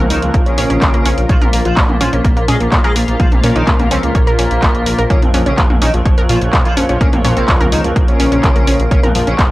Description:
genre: melodic techno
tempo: 126 BPM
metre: 4/4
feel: straight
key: Bb minor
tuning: A4 = 440 Hz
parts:
  - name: fat analog lead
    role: melody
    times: 0.0-9.5 s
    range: F3 to Ab4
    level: -19 LUFS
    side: equal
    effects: lush chorus, sidechain pumping
  - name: airy dreamy lead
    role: second line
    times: 0.0-9.5 s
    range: F2 to Ab3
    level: -24 LUFS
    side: equal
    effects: chorus, sidechain pumping, analog delay
  - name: sweeping resonant pad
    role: sustained chords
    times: 0.0-9.5 s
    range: Bb3 to F5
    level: -26 LUFS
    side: right 1 dB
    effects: chorus, sidechain pumping
  - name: wide unison pluck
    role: arpeggios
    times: 0.0-9.5 s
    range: Bb3 to Db6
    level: -21 LUFS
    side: equal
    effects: sidechain pumping, analog delay
  - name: analog synth brass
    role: stabs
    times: 0.0-9.3 s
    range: Bb3 to Bb4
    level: -22 LUFS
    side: left 1 dB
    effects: chorus, cassette tape, sidechain pumping, analog delay
  - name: swelling detuned saw bass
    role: bass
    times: 0.0-9.5 s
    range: Bb1 to Bb2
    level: -18 LUFS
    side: equal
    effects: sidechain pumping
  - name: deep house drum kit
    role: drums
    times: 0.1-9.5 s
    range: handclaps, hi-hat, toms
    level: -19 LUFS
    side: equal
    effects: none
  - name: electronic kick drum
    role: drums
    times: 0.3-9.5 s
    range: none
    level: -14 LUFS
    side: equal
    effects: none
room: little or no reverb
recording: dry, gritty hardware recording, transformer saturation, cassette tape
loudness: -10 LUFS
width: side -18 dB against mid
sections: 0.0-9.5 A section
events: none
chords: 0.0 Bbm

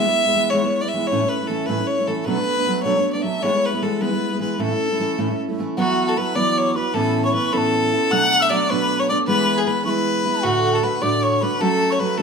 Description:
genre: celtic folk, Celtic jig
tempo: 103 BPM (dotted quarters)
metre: 6/8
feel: straight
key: A major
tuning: A4 = 440 Hz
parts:
  - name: clear fiddle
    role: melody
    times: 0.0-12.2 s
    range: F#4 to F#5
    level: -20 LUFS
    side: left 1 dB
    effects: none
  - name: fingerpicked steel-string acoustic guitar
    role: accompaniment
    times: 0.0-12.2 s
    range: D2 to F#4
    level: -21 LUFS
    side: right 1 dB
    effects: none
  - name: mellow hollow tin whistle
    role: second line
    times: 5.8-12.2 s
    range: F#5 to F#6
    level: -25 LUFS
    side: left 1 dB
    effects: none
room: wet large studio reverb, RT60 1.1 s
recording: band playing live in one room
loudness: -17 LUFS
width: side -5 dB against mid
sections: 0.0-5.8 A section; 5.8-12.2 B section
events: none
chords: 0.0 E; 1.1 A; 2.3 Bm7; 3.4 E; 4.6 A; 5.8 Esus2; 6.9 Aadd9; 8.1 Bm7; 9.3 E; 10.4 D; 11.6 F#m

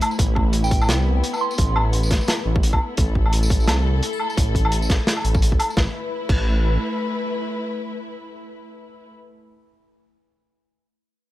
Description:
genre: half-time drum and bass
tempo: 172 BPM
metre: 4/4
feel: swing 58% on 16ths, half-time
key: A minor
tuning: A4 = 440 Hz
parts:
  - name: dark studio string section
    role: sustained chords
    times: 0.0-9.1 s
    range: A3 to C5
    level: -28 LUFS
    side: left 2 dB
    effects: sidechain pumping
  - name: crunchy breakbeat drum kit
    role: drums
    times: 0.0-6.4 s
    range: crash cymbal, hi-hat, snare drum, tambourine, woodblock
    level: -24 LUFS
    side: equal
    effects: none
  - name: dark detuned saw bass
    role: bass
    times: 0.2-6.8 s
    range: A1 to C2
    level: -20 LUFS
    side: equal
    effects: none
  - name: electronic kick drum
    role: drums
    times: 0.2-6.4 s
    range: none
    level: -20 LUFS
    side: equal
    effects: overdrive
  - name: soft synth bell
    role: melody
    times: 0.6-1.8 s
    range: G5 to C6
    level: -29 LUFS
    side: right 4 dB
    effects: chorus, phaser, ping-pong delay
room: little or no reverb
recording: none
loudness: -18 LUFS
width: side -15 dB against mid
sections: 0.0-5.8 A section; 5.8-8.6 B section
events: drop 0.0-5.8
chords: 0.0 A5

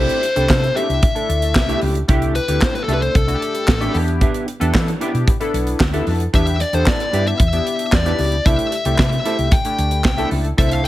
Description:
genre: early-eighties boogie funk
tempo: 113 BPM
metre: 4/4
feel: straight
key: C major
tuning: A4 = 440 Hz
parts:
  - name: fuzz lead guitar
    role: melody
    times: 0.0-10.9 s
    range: A4 to G5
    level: -21 LUFS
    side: left 3 dB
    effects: distortion, slapback echo
  - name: chorused polysynth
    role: accompaniment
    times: 0.0-10.9 s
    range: A3 to A4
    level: -24 LUFS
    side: left 1 dB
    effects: none
  - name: mellow electric guitar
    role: riff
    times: 0.0-10.9 s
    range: C4 to G5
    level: -27 LUFS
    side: right 5 dB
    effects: wide subtle chorus
  - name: hollow-body short-scale fingered electric bass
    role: bass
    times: 0.0-10.9 s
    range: A1 to E3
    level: -20 LUFS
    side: equal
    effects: none
  - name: modern studio drum kit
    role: drums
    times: 0.1-10.9 s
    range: handclaps, hi-hat, kick drum, snare drum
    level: -18 LUFS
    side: equal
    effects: gated reverb
room: light reverb, small room ambience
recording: none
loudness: -15 LUFS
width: side -15 dB against mid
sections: 0.0-10.9 A section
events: none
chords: 0.0 C6; 3.9 Em7; 8.5 C6

